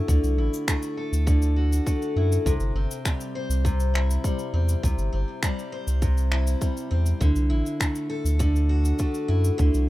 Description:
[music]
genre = folktronica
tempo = 101 BPM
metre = 4/4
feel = straight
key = C lydian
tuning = A4 = 441 Hz
[part]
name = picked steel-string acoustic guitar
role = arpeggios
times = 0.0-9.9 s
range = C3 to C5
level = -28 LUFS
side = left 1 dB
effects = low-pass filter, digital delay
[part]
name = warm sub bass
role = bass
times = 0.1-9.9 s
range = G1 to F#2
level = -22 LUFS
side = equal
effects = none
[part]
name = cabasa and finger snaps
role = drums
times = 0.1-9.9 s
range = none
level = -32 LUFS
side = left 1 dB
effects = none
[part]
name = electronic kick drum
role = drums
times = 0.1-9.7 s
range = none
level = -25 LUFS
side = equal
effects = none
[sound]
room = studio reverb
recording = rough home demo mix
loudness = -22 LUFS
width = side -17 dB against mid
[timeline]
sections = 0.0-9.9 A section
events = none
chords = 0.0 Dadd9; 2.5 C; 7.2 Dadd9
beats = | 0.09 0.68 1.27 1.87 | 2.46 3.06 3.65 4.24 | 4.84 5.43 6.03 6.62 | 7.21 7.81 8.40 9.00 | 9.59

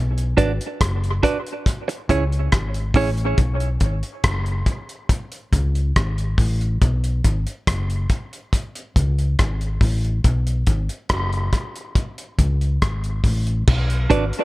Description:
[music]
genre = dub reggae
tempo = 70 BPM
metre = 4/4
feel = straight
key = B dorian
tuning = A4 = 440 Hz
[part]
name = hollow-body short-scale fingered electric bass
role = bass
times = 0.0-14.3 s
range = F#1 to C#2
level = -21 LUFS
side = equal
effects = none
[part]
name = cloth-damped thuddy drum kit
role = drums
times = 0.2-14.4 s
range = crash cymbal, hi-hat, kick drum, rim click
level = -20 LUFS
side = equal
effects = none
[part]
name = semi-hollow electric guitar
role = accompaniment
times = 0.4-3.1, 14.1-14.2 s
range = C#4 to D5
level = -22 LUFS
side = right 4 dB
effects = dub echo
[sound]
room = light reverb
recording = none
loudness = -19 LUFS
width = side -19 dB against mid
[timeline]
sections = 0.0-13.7 A section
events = none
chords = 0.0 Bm; 1.7 C#m; 3.4 B5; 5.1 C#5; 6.8 B5; 8.5 C#5; 10.2 B5; 12.0 C#5; 13.7 Bm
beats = 0.80 1.66 2.52 | 3.38 4.24 5.10 5.96 | 6.81 7.67 8.53 9.39 | 10.25 11.10 11.96 12.82 | 13.67

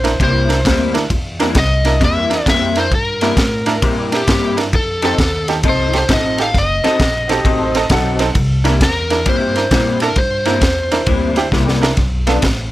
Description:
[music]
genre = electric blues shuffle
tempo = 132 BPM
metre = 4/4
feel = swing 65% on 8ths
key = C mixolydian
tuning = A4 = 443 Hz
[part]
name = overdriven slide guitar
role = melody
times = 0.0-11.5 s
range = G4 to F5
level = -18 LUFS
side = left 1 dB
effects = none
[part]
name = tack piano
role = accompaniment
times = 0.0-12.4 s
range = B3 to Bb4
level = -19 LUFS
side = right 4 dB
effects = none
[part]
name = electric guitar through a small old amp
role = riff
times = 0.0-12.5 s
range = G2 to A4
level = -20 LUFS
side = left 3 dB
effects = ensemble chorus
[part]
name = upright bass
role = bass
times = 0.0-12.7 s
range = F#1 to Bb2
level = -20 LUFS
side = equal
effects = none
[part]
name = crunchy breakbeat drum kit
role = drums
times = 0.0-12.6 s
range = kick drum, ride cymbal, snare drum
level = -18 LUFS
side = equal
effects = none
[part]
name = bright upright piano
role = second line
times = 7.3-8.7 s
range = F#4 to F#5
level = -23 LUFS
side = right 2 dB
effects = none
[sound]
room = light reverb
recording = none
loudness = -13 LUFS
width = side -16 dB against mid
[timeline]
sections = 0.0-12.7 A section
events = drum fill 11.5-12.0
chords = 0.0 C7; 4.7 F7; 6.5 F#dim7; 8.4 C7; 12.0 G7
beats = 0.20 0.65 | 1.11 1.56 2.01 2.46 | 2.92 3.37 3.83 4.28 | 4.73 5.18 5.64 6.09 | 6.54 7.00 7.45 7.90 | 8.36 8.81 9.26 9.71 | 10.17 10.62 11.07 11.52 | 11.98 12.43

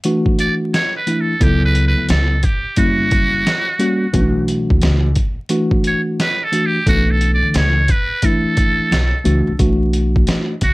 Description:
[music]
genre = hip hop, jazz-hop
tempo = 88 BPM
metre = 4/4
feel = swing 64% on 16ths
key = B minor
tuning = A4 = 440 Hz
[part]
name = tine electric piano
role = accompaniment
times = 0.0-10.5 s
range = E3 to A4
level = -18 LUFS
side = equal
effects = medium stereo tremolo
[part]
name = trip hop sampler-style drum kit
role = drums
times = 0.0-10.7 s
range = hi-hat, kick drum, snare drum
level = -18 LUFS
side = equal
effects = none
[part]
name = trumpet with metal mute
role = melody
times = 0.4-10.7 s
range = F#4 to D5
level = -19 LUFS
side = right 2 dB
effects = none
[part]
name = upright bass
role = bass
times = 1.4-10.7 s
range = F#1 to D2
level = -17 LUFS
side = equal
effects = none
[sound]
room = light reverb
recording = vinyl crackle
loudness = -14 LUFS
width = side -21 dB against mid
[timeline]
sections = 0.0-9.6 A section; 9.6-10.7 B section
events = muted trumpet solo 0.0-9.6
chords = 0.0 E9sus4; 1.4 A13/C#; 2.8 F#7b9; 4.1 Bm11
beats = 0.05 0.73 | 1.41 2.09 2.77 3.46 | 4.14 4.82 5.50 6.18 | 6.87 7.55 8.23 8.91 | 9.59 10.28

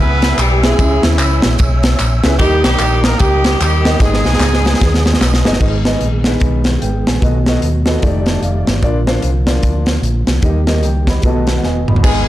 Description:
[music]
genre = uptempo gospel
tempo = 149 BPM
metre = 4/4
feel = swing 61% on 8ths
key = G# harmonic minor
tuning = A4 = 439 Hz
[part]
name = warm horn section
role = melody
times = 0.0-5.2, 12.0-12.3 s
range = E3 to B4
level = -17 LUFS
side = equal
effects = none
[part]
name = mellow tonewheel organ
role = sustained chords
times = 0.0-12.3 s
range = D3 to E6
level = -23 LUFS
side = right 2 dB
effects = chorus vibrato, fast rotary speaker
[part]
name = fingered electric bass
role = bass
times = 0.0-12.2 s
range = E1 to D#2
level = -15 LUFS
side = equal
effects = tube saturation
[part]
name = modern studio drum kit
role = drums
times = 0.2-12.2 s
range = crash cymbal, hi-hat, kick drum, ride cymbal, snare drum, toms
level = -16 LUFS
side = equal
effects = none
[part]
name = tambourine and handclaps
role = percussion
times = 0.2-5.5, 12.0-12.2 s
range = none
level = -25 LUFS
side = equal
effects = none
[part]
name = dark concert grand piano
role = accompaniment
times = 0.6-12.3 s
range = G#2 to B5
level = -20 LUFS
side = left 2 dB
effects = none
[sound]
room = light reverb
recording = blown-out, overdriven recording, overdrive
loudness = -11 LUFS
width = side -14 dB against mid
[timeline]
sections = 0.0-5.6 A section; 5.6-12.0 B section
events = drum fill 4.0-5.6, 11.6-12.0; grand piano fill 8.0-8.8, 10.8-12.0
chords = 0.0 E; 0.8 C#m; 2.4 D#; 4.0 G#m; 7.2 B7; 8.0 F13; 8.8 A#; 10.4 D#; 11.2 B7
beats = 0.39 | 0.79 1.19 1.59 1.99 | 2.39 2.79 3.20 3.60 | 4.00 4.40 4.80 5.20 | 5.61 6.01 6.41 6.81 | 7.21 7.62 8.02 8.42 | 8.82 9.23 9.63 10.03 | 10.43 10.84 11.24 11.64 | 12.04

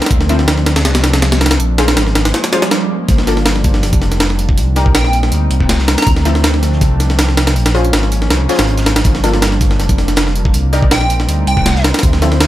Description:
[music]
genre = drum and bass, jungle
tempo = 161 BPM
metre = 4/4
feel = straight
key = G minor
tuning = A4 = 442 Hz
[part]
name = warbly tape-like pad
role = sustained chords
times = 0.0-12.5 s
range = F3 to Eb4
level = -21 LUFS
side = equal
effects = chorus, built-in reverb
[part]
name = orchestra-hit-like synth stab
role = stabs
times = 0.0-12.5 s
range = F3 to D5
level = -21 LUFS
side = left 2 dB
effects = built-in reverb, dub echo
[part]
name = breakbeat sampler-style drum kit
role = drums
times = 0.0-12.5 s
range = hi-hat, kick drum, snare drum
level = -14 LUFS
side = equal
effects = small room reverb
[part]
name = dark detuned saw bass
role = bass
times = 0.1-12.5 s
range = F1 to D2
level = -14 LUFS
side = equal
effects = none
[part]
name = swell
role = sound effects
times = 2.5-3.1 s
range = none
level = -22 LUFS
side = right 10 dB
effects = none
[part]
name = crunchy breakbeat drum kit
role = drums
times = 3.1-12.5 s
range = hi-hat, snare drum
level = -28 LUFS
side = right 3 dB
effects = none
[part]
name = plucky unison lead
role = melody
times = 5.0-6.1, 10.9-11.8 s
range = G5 to Bb5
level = -21 LUFS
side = right 1 dB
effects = dub echo
[sound]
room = digital ambience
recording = none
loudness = -10 LUFS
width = side -14 dB against mid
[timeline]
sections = 0.0-12.5 A section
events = kick drops out 2.3-3.1; swell 2.5-3.1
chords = 0.1 Dm7; 1.6 Bbm7; 3.1 Gm7; 4.6 Cm7; 6.1 Dm7; 7.6 Bbm7; 9.1 Gm7; 10.5 Cm7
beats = | 0.11 0.48 0.85 1.23 | 1.60 1.97 2.34 2.71 | 3.09 3.46 3.83 4.21 | 4.58 4.95 5.32 5.70 | 6.07 6.44 6.82 7.19 | 7.56 7.93 8.30 8.68 | 9.05 9.42 9.80 10.17 | 10.54 10.91 11.29 11.66 | 12.03 12.40

